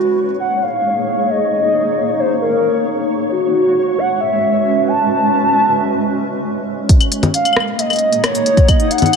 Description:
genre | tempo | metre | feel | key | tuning
IDM | 134 BPM | 4/4 | straight | unclear | A4 = 440 Hz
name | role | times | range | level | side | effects
warbly nostalgic lead | melody | 0.0-9.2 s | F#4 to A5 | -16 LUFS | equal | chorus, tremolo, digital delay
granular cloud pad | sustained chords | 0.0-9.2 s | G#3 to F#5 | -19 LUFS | right 1 dB | built-in reverb, vintage 12-bit sampler grit
flickering grainy texture | texture | 0.1-6.9 s | C#5 | -26 LUFS | equal | built-in reverb
electronic kick drum | drums | 6.9-8.8 s | none | -10 LUFS | equal | none
organic electronic drum kit | drums | 6.9-9.2 s | cabasa, claves, congas, hi-hat, rim click | -17 LUFS | left 3 dB | none
room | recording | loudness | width
moderate lush hall reverb, RT60 1.9 s | none | -13 LUFS | side -6 dB against mid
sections
0.0-6.9 A section; 6.9-9.2 B section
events
filter sweep on ambient pad 0.0-6.9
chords
0.0 D#m7; 3.1 F#m7; 6.9 D#m7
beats
0.18 0.62 1.07 | 1.52 1.97 2.42 2.86 | 3.31 3.76 4.21 4.66 | 5.10 5.55 6.00 6.45 | 6.89 7.34 7.79 8.24 | 8.69 9.13

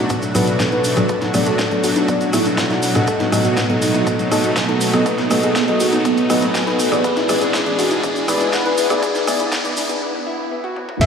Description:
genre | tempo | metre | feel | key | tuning
progressive house | 121 BPM | 4/4 | straight | unclear | A4 = 439 Hz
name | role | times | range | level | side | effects
supersaw pad | sustained chords | 0.0-11.1 s | B2 to G#4 | -22 LUFS | equal | sidechain pumping
soft round pluck | arpeggios | 0.0-11.1 s | B3 to B4 | -21 LUFS | left 1 dB | wide subtle chorus, sidechain pumping, ping-pong delay
deep mellow chord stab | stabs | 0.0-10.0 s | A2 to G#5 | -20 LUFS | equal | chorus, phaser, sidechain pumping, ping-pong delay
riser | sound effects | 0.2-10.0 s | none | -28 LUFS | equal | none
electronic kick drum | drums | 0.1-11.1 s | none | -22 LUFS | left 1 dB | overdrive, high-pass filter on kick
pop drum kit | drums | 0.1-11.1 s | crash cymbal, hi-hat, rim click, snare drum, toms | -24 LUFS | left 1 dB | overdrive, high-pass filter on hats, high-pass filter on snare, high-pass filter on toms, high-pass filter on cymbals, high-pass filter on room
cabasa | percussion | 0.1-10.0 s | none | -31 LUFS | right 2 dB | none
congas | percussion | 0.3-10.0 s | none | -30 LUFS | equal | none
wide unison lead | melody | 11.0-11.1 s | E5 | -15 LUFS | equal | lush chorus, cassette tape, sidechain pumping
electronic ride cymbal | drums | 11.0-11.1 s | none | -21 LUFS | right 2 dB | sidechain pumping on cymbals, high-pass filter on cymbals, high-pass filter on room
room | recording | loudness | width
wet lush hall reverb, RT60 2.6 s | played on a big sound system in a bare room, large studio reverb, high-pass filter | -15 LUFS | side -6 dB against mid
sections
0.0-11.0 A section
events
build-up 0.0-11.0; filter sweep on synth pluck 0.0-11.0; filter sweep on synth stab 0.0-11.0; riser 0.2-10.0; break 10.0-11.0; drum fill 10.8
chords
0.0 D6/A; 3.1 B7/A; 7.0 E7/A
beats
0.10 0.60 | 1.09 1.59 2.08 2.58 | 3.08 3.57 4.07 4.56 | 5.06 5.55 6.05 6.55 | 7.04 7.54 8.04 8.53 | 9.03 9.52 10.02 10.51 | 11.01

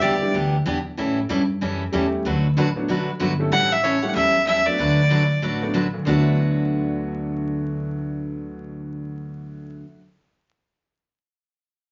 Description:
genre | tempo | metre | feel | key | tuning
country, western swing | 189 BPM | 4/4 | swing 63% on 8ths | D major | A4 = 440 Hz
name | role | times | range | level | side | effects
clear fiddle | melody | 0.0-0.3, 3.5-5.7 s | C#5 to F#5 | -23 LUFS | equal | none
clear upright piano | accompaniment | 0.0-10.0 s | D2 to A4 | -31 LUFS | equal | none
picked steel-string acoustic guitar | accompaniment | 0.0-9.9 s | D3 to B4 | -26 LUFS | equal | none
upright bass | bass | 0.0-9.8 s | G1 to A2 | -28 LUFS | equal | none
room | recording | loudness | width
wet club reverb, RT60 0.6 s | vinyl crackle, nothing above 7.5 kHz | -22 LUFS | mono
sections
0.0-3.5 A section; 3.5-6.1 B section; 6.1-8.6 C section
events
none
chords
0.0 Em7; 1.0 A7; 2.2 D6; 3.5 A7; 4.8 D6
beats
0.02 0.34 0.66 | 0.97 1.29 1.61 1.93 | 2.25 2.56 2.88 3.20 | 3.52 3.83 4.15 4.47 | 4.79 5.11 5.43 5.75 | 6.06 6.38 6.70 7.02 | 7.34 7.66 7.98 8.29

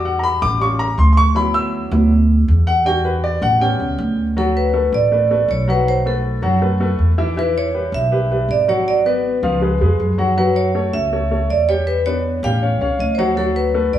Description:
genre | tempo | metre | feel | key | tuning
Afro-Cuban jazz | 160 BPM | 4/4 | straight | D major | A4 = 444 Hz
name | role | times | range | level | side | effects
warm baby grand piano | accompaniment | 0.0-14.0 s | E3 to E6 | -19 LUFS | left 1 dB | none
upright bass | bass | 0.0-14.0 s | G#1 to F#2 | -18 LUFS | equal | none
vibraphone with medium hard mallets | melody | 4.4-14.0 s | A4 to F5 | -19 LUFS | right 1 dB | none
room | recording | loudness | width
wet large studio reverb, RT60 1.3 s | band playing live in one room | -14 LUFS | side -11 dB against mid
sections
0.0-4.4 A section; 4.4-14.0 B section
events
grand piano solo 0.0-4.4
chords
0.0 Em7; 0.6 Aaug7; 1.4 D69; 2.9 Em7; 3.6 A7; 4.4 D6; 5.9 B5; 7.4 Emadd9; 8.9 G#m7b5; 9.6 C#7; 10.4 F#m7; 11.9 Em7; 12.6 Aaug; 13.4 D6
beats
0.24 0.61 0.99 | 1.36 1.74 2.11 2.49 | 2.86 3.24 3.61 3.99 | 4.36 4.74 5.11 5.49 | 5.87 6.24 6.62 6.99 | 7.37 7.74 8.12 8.49 | 8.87 9.24 9.62 10.00 | 10.37 10.75 11.12 11.50 | 11.87 12.25 12.62 13.00 | 13.37 13.75

